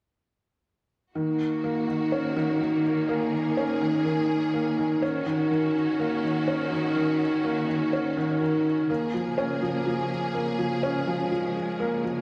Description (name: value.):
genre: piano and strings electronica.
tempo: 124 BPM.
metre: 4/4.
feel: straight.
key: F# major.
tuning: A4 = 441 Hz.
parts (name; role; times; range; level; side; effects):
clear studio string section; sustained chords; 1.2-12.2 s; C#3 to G#4; -34 LUFS; equal; none.
felt-muted upright piano; riff; 1.2-12.2 s; D#3 to C#4; -27 LUFS; equal; digital delay.
room: wet recital hall reverb, RT60 1.6 s.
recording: none.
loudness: -26 LUFS.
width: mono.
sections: 1.2-12.2 A section.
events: none.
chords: 1.2 F#6; 5.0 D#m7; 8.9 A#m7.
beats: | 1.15 1.64 2.12 2.61 | 3.09 3.57 4.06 4.54 | 5.03 5.51 5.99 6.48 | 6.96 7.45 7.93 8.41 | 8.90 9.38 9.86 10.35 | 10.83 11.32 11.80.